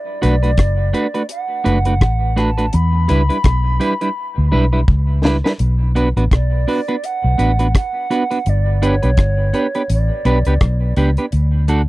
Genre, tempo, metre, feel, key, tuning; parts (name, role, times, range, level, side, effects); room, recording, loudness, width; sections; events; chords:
roots reggae; 84 BPM; 4/4; swing 59% on 16ths; B minor; A4 = 440 Hz
mellow hollow silver concert flute; melody; 0.0-10.9 s; C#5 to B5; -23 LUFS; right 2 dB; dub echo
clean electric guitar; accompaniment; 0.2-11.8 s; G3 to B4; -20 LUFS; right 2 dB; dub echo
vintage muted fingered electric bass; bass; 0.2-11.9 s; F#1 to E2; -15 LUFS; equal
deep reggae drum kit; drums; 0.2-11.9 s; hi-hat, kick drum, rim click, snare drum; -15 LUFS; equal
little or no reverb; dry, close 1970s-style studio recording; -14 LUFS; side -18 dB against mid
0.0-5.6 A section; 5.6-11.9 B section
drum fill 4.2-5.6
0.0 Bm7; 2.7 Em7; 5.6 Bm; 8.5 G; 11.3 D